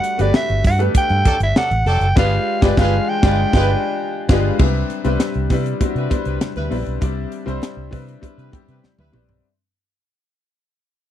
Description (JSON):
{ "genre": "polished 1980s jazz-funk pop", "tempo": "99 BPM", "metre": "4/4", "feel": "straight", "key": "unclear", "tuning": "A4 = 440 Hz", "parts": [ { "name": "growling soprano saxophone", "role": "melody", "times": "0.0-4.3 s", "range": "D5 to G5", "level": "-20 LUFS", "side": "right 1 dB", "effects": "none" }, { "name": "clear grand piano", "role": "accompaniment", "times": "0.0-9.5 s", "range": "G3 to D5", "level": "-22 LUFS", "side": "left 3 dB", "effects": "lush chorus" }, { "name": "tight funk drum kit", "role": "drums", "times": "0.0-9.4 s", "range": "crash cymbal, hi-hat, kick drum, snare drum, toms", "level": "-17 LUFS", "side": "equal", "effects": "none" }, { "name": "vintage muted fingered electric bass", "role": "bass", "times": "0.2-9.4 s", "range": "F1 to C3", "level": "-20 LUFS", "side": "right 1 dB", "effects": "none" }, { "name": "congas", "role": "percussion", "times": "0.3-9.1 s", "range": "none", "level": "-30 LUFS", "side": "right 4 dB", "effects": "none" }, { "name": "mellow horn section", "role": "second line", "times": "1.3-9.2 s", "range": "F#3 to B4", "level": "-26 LUFS", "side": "right 1 dB", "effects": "none" } ], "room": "little or no reverb", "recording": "dry, close 1970s-style studio recording", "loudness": "-15 LUFS", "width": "side -11 dB against mid", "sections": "0.0-4.6 A section; 4.6-9.4 B section", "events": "band accent 2.2-4.6; fade-out 4.6-9.4; drum fill 8.8-9.4", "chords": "0.0 Gmaj9; 2.2 G7b9; 4.6 Cmaj9" }